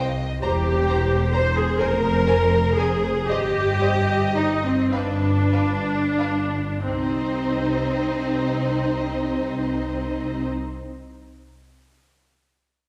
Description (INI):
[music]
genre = classical, slow romantic movement for string orchestra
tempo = 30-45 BPM (dotted quarters)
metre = 6/8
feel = rubato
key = C minor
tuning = A4 = 440 Hz
[part]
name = rich symphonic violin section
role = melody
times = 0.0-10.5 s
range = B4 to Eb5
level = -35 LUFS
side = equal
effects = none
[part]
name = warm studio violin section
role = second line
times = 0.0-10.5 s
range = Eb4 to Bb5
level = -31 LUFS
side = equal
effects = none
[part]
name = bright symphonic double bass section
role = bass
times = 0.0-10.5 s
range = E1 to C2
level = -29 LUFS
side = equal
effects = none
[part]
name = clear symphonic cello section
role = bass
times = 0.0-10.5 s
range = C2 to C3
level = -30 LUFS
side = equal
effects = none
[part]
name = clear symphonic viola section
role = accompaniment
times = 0.4-10.5 s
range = C4 to C5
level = -25 LUFS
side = equal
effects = none
[sound]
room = wet concert hall reverb, RT60 1.8 s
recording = heard from further back in the room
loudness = -22 LUFS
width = mono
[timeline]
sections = 0.0-6.8 A section; 6.8-10.4 B section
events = slowing down 0.0-6.8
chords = 0.4 C/E; 1.8 Fm; 3.3 Cm/G; 4.9 G; 6.8 Cm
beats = | 0.44 1.79 | 3.28 4.93 | 6.82 8.63